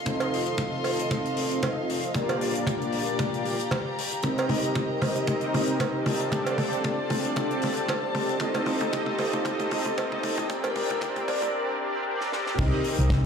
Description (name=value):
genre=nu-disco, nu disco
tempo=115 BPM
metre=4/4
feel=swing 55% on 16ths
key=C dorian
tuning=A4 = 443 Hz
part: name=mellow synth brass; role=accompaniment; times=0.0-13.3 s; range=Bb3 to Eb5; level=-27 LUFS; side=equal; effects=chorus, ping-pong delay
part: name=warm chamber string section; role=sustained chords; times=0.0-11.5 s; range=F4 to C6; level=-33 LUFS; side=left 2 dB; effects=sidechain pumping
part: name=kick drum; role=drums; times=0.1-13.2 s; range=none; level=-32 LUFS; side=equal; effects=high-pass filter on kick, high-pass filter on snare, high-pass filter on room
part: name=tight funk drum kit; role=drums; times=0.1-13.2 s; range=crash cymbal, hi-hat, snare drum, toms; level=-31 LUFS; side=left 1 dB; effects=none
part: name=cowbell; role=percussion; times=0.2-11.4 s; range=none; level=-32 LUFS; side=right 5 dB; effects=none
part: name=hollow-body short-scale fingered electric bass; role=bass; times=12.6-13.3 s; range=C2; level=-23 LUFS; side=equal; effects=none
room=wet lush hall reverb, RT60 1.9 s, small room ambience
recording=played on a big sound system in a bare room, large studio reverb, high-pass filter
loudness=-24 LUFS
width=side -6 dB against mid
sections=0.0-12.6 A section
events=build-up 0.0-12.6; drum fill 0.0-11.5, 12.2-12.6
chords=0.0 F7; 2.1 Gm7; 4.2 Cm7; 6.1 Dm7; 8.2 F7; 10.5 Gm7; 12.6 Cm7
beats=| 0.06 0.58 1.11 1.63 | 2.15 2.67 3.19 3.71 | 4.24 4.76 5.28 5.80 | 6.32 6.85 7.37 7.89 | 8.41 8.93 9.46 9.98 | 10.50 11.02 11.54 12.06 | 12.59 13.11